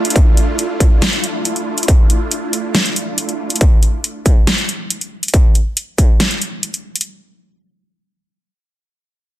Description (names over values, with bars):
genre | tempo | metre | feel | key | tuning
heavy wobble dubstep | 139 BPM | 4/4 | half-time | D minor | A4 = 440 Hz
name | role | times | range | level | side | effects
supersaw pad | sustained chords | 0.0-3.6 s | A3 to F4 | -22 LUFS | right 2 dB | phaser, sidechain pumping
dubstep drum kit | drums | 0.0-7.1 s | hi-hat, snare drum | -17 LUFS | equal | none
warbly tape-like pad | texture | 0.0-3.6 s | D4 to E5 | -36 LUFS | equal | none
electronic kick drum | drums | 0.2-6.1 s | none | -11 LUFS | equal | distortion
room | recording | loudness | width
little or no reverb | dense, heavily limited modern master, lossy compression artefacts | -13 LUFS | side -14 dB against mid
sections
0.0-7.1 A section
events
none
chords
0.0 Dmadd9